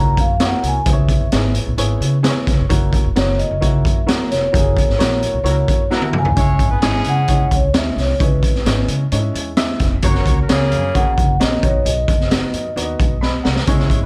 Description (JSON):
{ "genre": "uptempo 1960s-style soul", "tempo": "131 BPM", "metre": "4/4", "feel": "straight", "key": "C# dorian", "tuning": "A4 = 440 Hz", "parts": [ { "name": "vibraphone with soft mallets", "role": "melody", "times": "0.0-12.7 s", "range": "B4 to A#5", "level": "-24 LUFS", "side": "equal", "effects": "none" }, { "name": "warm upright piano", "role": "accompaniment", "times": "0.0-14.0 s", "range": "G#3 to B5", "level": "-27 LUFS", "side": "equal", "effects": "none" }, { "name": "upright bass", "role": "bass", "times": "0.0-14.1 s", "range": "E1 to C#3", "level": "-22 LUFS", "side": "equal", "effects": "none" }, { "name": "raw garage drum kit", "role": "drums", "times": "0.2-14.0 s", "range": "hi-hat, kick drum, snare drum, toms", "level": "-20 LUFS", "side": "equal", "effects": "none" }, { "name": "warm horn section", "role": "second line", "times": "5.4-14.1 s", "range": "C#3 to C#5", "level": "-27 LUFS", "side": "equal", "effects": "none" } ], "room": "little or no reverb", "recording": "dark, warm production", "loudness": "-17 LUFS", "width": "mono", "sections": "0.0-6.4 A section; 6.4-14.1 B section", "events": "band accent 4.5-6.4; drum fill 5.9-6.4, 13.2-13.7", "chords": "0.0 F#7; 0.9 C#m7; 2.7 F#7; 6.4 C#m; 10.0 F#; 11.6 B" }